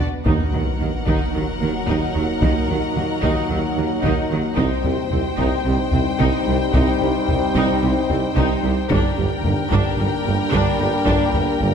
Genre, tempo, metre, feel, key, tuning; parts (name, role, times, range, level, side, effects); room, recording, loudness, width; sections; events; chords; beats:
cinematic, hybrid orchestral and electronic film score; 111 BPM; 4/4; straight; A4 = 440 Hz
clear symphonic violin section; second line; 0.0-11.7 s; Bb4 to C5; -29 LUFS; left 7 dB
rich symphonic viola section; accompaniment; 0.0-11.7 s; Gb3 to Eb4; -27 LUFS; equal
ethereal airy pad; sustained chords; 0.0-11.7 s; G3 to Eb5; -29 LUFS; right 1 dB
rich studio double bass section; bass; 0.0-11.7 s; G1 to Eb2; -26 LUFS; right 3 dB
rich symphonic cello section; bass; 0.0-11.7 s; G2 to Eb3; -26 LUFS; right 3 dB
rich symphonic violin section; melody; 0.3-11.7 s; Gb5 to G5; -29 LUFS; left 5 dB
clear trombone section; sustained chords; 0.3-11.7 s; G2 to G3; -29 LUFS; right 4 dB
mellow French horn section; sustained chords; 0.3-11.7 s; Bb3 to Eb4; -27 LUFS; left 5 dB
clear tuba; bass; 0.3-11.7 s; G1 to Eb2; -26 LUFS; right 4 dB
taiko ensemble; drums; 0.3-11.7 s; -25 LUFS; left 1 dB
sub drop; sound effects; 0.3-2.4 s; -27 LUFS; equal
moderate scoring stage reverb, RT60 2.0 s; -17 LUFS; side -7 dB against mid
0.3-11.7 A section
drum fill 0.0; impact 0.3-2.4
0.3 Ebm; 4.6 Cm; 8.9 Gm
| 0.26 0.80 1.34 1.88 | 2.42 2.96 3.50 4.04 | 4.58 5.12 5.66 6.20 | 6.74 7.29 7.83 8.37 | 8.91 9.45 9.99 10.53 | 11.07 11.61